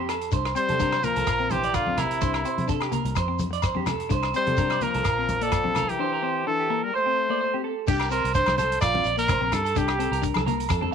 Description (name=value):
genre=highlife guitar band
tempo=127 BPM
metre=4/4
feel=swing 54% on 16ths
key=C mixolydian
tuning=A4 = 440 Hz
part: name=clean electric guitar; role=accompaniment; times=0.0-10.9 s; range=Bb3 to D4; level=-32 LUFS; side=left 15 dB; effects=analog chorus
part: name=electric guitar through a small old amp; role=arpeggios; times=0.0-10.9 s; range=F4 to D5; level=-29 LUFS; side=right 13 dB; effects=slapback echo
part: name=fingered electric bass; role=bass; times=0.0-10.9 s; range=Bb1 to C3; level=-31 LUFS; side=equal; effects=tube saturation
part: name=vintage drum kit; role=drums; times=0.1-10.8 s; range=crash cymbal, hi-hat, kick drum, rim click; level=-32 LUFS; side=right 4 dB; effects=none
part: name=agogo bells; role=percussion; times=0.1-10.8 s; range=none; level=-34 LUFS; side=left 16 dB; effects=none
part: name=shekere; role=percussion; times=0.3-10.8 s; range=none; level=-30 LUFS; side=left 3 dB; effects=none
part: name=bright trumpet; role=melody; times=0.6-10.2 s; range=E4 to D5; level=-25 LUFS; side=equal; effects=none
part: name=growling trombone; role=second line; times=0.6-7.6 s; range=C3 to A3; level=-34 LUFS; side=left 13 dB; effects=none
part: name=congas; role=percussion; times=0.7-10.9 s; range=none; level=-32 LUFS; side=equal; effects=none
room=light reverb, small room ambience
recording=1960s-style stereo with parts hard left and right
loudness=-22 LUFS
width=side -7 dB against mid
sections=0.0-7.9 A section; 7.9-10.9 B section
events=none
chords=0.3 Csus2; 1.3 Bb; 2.2 Cadd9; 3.2 F; 4.1 Csus2; 5.1 Bb; 6.0 Cadd9; 7.9 Csus2; 8.8 Bb; 9.8 Csus2